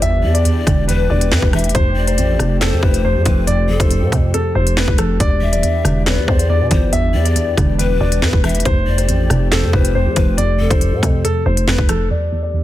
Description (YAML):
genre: hip hop, drill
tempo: 139 BPM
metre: 4/4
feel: half-time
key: E phrygian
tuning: A4 = 440 Hz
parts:
  - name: dark concert grand piano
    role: melody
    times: 0.0-12.6 s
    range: A4 to E5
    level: -22 LUFS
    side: left 3 dB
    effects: low-pass filter
  - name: soft round pluck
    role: accompaniment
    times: 0.0-12.6 s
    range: E2 to F3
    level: -19 LUFS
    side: right 1 dB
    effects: chorus, low-pass filter
  - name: dark analog pad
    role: sustained chords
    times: 0.0-12.6 s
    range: E3 to G4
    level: -26 LUFS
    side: right 1 dB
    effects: chorus, low-pass filter
  - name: growling 808-style bass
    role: bass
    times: 0.0-12.1 s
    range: D1 to B2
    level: -18 LUFS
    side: equal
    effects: none
  - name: drill drum kit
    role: drums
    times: 0.0-12.0 s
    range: handclaps, hi-hat, kick drum, rim click, snare drum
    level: -17 LUFS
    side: equal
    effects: none
  - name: breathy hollow large pan pipes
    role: second line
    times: 0.2-11.2 s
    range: A4 to E5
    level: -25 LUFS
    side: left 6 dB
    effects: ping-pong delay
room: digital ambience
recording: dense, heavily limited modern master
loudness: -13 LUFS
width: side -14 dB against mid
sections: 0.0-12.1 A section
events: none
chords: 0.0 Em7; 1.7 Fadd9; 5.2 Em7; 8.7 Fadd9; 12.1 Em7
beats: | 0.02 0.45 0.89 1.32 | 1.75 2.18 2.61 3.04 | 3.48 3.91 4.34 4.77 | 5.20 5.63 6.06 6.50 | 6.93 7.36 7.79 8.22 | 8.65 9.09 9.52 9.95 | 10.38 10.81 11.24 11.68 | 12.11 12.54